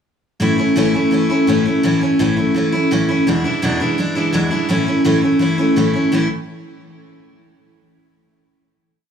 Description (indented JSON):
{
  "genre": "rock",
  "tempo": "168 BPM",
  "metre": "4/4",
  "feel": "straight",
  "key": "A major",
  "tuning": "A4 = 440 Hz",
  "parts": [
    { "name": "picked steel-string acoustic guitar", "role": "solo", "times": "0.4-6.3 s", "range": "E2 to E4", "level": "-14 LUFS", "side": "equal", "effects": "slapback echo" }
  ],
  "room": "small room ambience",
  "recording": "live gig heard through the venue's PA, club reverb",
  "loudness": "-14 LUFS",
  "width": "side -7 dB against mid",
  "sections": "0.4-6.1 A section; 6.1-7.5 final chord",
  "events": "none",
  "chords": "0.4 A; 3.3 E7; 4.7 A"
}